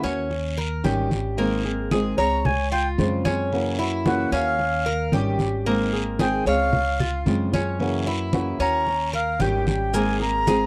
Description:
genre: latin, Cuban son and guajira.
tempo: 112 BPM.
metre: 4/4.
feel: straight.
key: Ab major.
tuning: A4 = 440 Hz.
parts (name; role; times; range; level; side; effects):
flamenco guitar; accompaniment; 0.0-10.7 s; Db3 to Ab4; -28 LUFS; equal; none.
Cuban tres; arpeggios; 0.0-10.7 s; Bb3 to Db5; -30 LUFS; equal; none.
upright bass; bass; 0.0-10.7 s; Ab1 to Gb2; -30 LUFS; equal; none.
congas; percussion; 0.0-10.7 s; none; -29 LUFS; equal; none.
guiro; percussion; 0.0-10.7 s; none; -40 LUFS; equal; none.
reedy jazz flute; melody; 2.2-10.7 s; F5 to Bb5; -26 LUFS; equal; none.
maracas; percussion; 9.9-10.7 s; none; -38 LUFS; equal; none.
room: light reverb.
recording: dry, close 1970s-style studio recording.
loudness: -23 LUFS.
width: mono.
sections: 0.0-10.7 A section.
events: flute solo 0.0-10.7.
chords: 0.3 Eb7; 1.4 Abadd9; 2.5 Dbmaj7; 3.5 Gb7; 4.6 Eb7; 5.7 Abadd9; 6.7 Dbmaj7; 7.8 Gb7; 8.9 Eb7; 9.9 Abadd9.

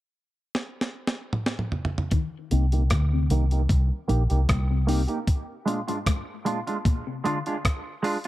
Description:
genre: dub reggae.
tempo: 76 BPM.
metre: 4/4.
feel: straight.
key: C minor.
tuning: A4 = 440 Hz.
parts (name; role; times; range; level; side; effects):
breakbeat sampler-style drum kit; drums; 0.5-8.3 s; hi-hat, kick drum, rim click, snare drum, toms; -26 LUFS; equal; none.
electric guitar through a small old amp; arpeggios; 2.1-7.4 s; Ab2 to Eb3; -34 LUFS; left 7 dB; lush chorus, low-pass filter, dub echo.
semi-hollow electric guitar; accompaniment; 2.5-8.3 s; Ab3 to G4; -29 LUFS; right 3 dB; lush chorus, low-pass filter, dub echo.
vintage muted fingered electric bass; bass; 2.5-5.1 s; Bb1 to D2; -21 LUFS; equal; none.
room: little or no reverb.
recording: echo-heavy mix.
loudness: -23 LUFS.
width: side -16 dB against mid.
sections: 0.0-2.1 A section; 2.1-8.3 B section.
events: drum fill 0.5-2.1; filter sweep 2.1-8.3; break 5.3-8.3.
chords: 0.0 N.C.; 2.1 Cm7; 5.3 Bb7.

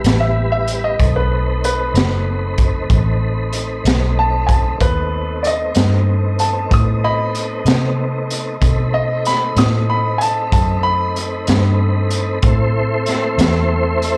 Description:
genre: slow blues.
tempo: 63 BPM (dotted quarters).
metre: 12/8.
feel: straight.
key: unclear.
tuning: A4 = 442 Hz.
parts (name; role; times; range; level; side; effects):
clear upright piano; second line; 0.0-12.7 s; B4 to D#6; -23 LUFS; equal; none.
tonewheel organ; sustained chords; 0.0-14.2 s; G3 to C5; -26 LUFS; equal; slow rotary speaker, chorus vibrato.
vintage muted fingered electric bass; bass; 0.0-14.2 s; F#1 to C3; -20 LUFS; equal; none.
raw garage drum kit; drums; 0.0-14.2 s; hi-hat, kick drum, snare drum; -21 LUFS; equal; none.
mellow horn section; sustained chords; 4.8-14.2 s; C4 to E5; -33 LUFS; equal; none.
room: light reverb.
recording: live gig heard through the venue's PA, club reverb.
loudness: -17 LUFS.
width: mono.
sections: 0.0-14.2 A section.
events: upright piano solo 0.0-14.2.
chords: 0.0 Em; 1.0 B7b9; 12.4 Am.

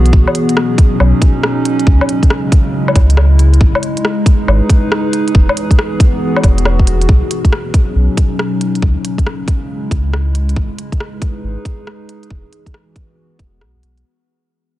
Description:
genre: future garage.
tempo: 138 BPM.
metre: 4/4.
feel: swing 65% on 16ths.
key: C# minor.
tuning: A4 = 440 Hz.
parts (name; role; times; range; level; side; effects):
warbly tape-like pad; sustained chords; 0.0-14.0 s; B2 to B4; -17 LUFS; equal; chorus, built-in reverb, sidechain pumping.
warm sub bass; bass; 0.0-14.0 s; E1 to C#2; -11 LUFS; equal; tube saturation, sidechain pumping.
electronic kick drum; drums; 0.1-13.5 s; none; -11 LUFS; equal; vintage 12-bit sampler grit.
organic electronic drum kit; drums; 0.1-14.0 s; hi-hat, rim click, woodblock; -19 LUFS; left 1 dB; overdrive, vintage 12-bit sampler grit.
room: digital ambience.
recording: dense, heavily limited modern master.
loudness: -10 LUFS.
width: side -15 dB against mid.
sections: 0.0-7.1 A section; 7.1-14.0 B section.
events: fade-out 7.1-14.0.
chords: 0.1 B; 1.9 C#m; 3.6 G#m; 5.3 Emaj7; 7.1 B; 8.8 C#m; 10.6 G#m; 12.3 Emaj7.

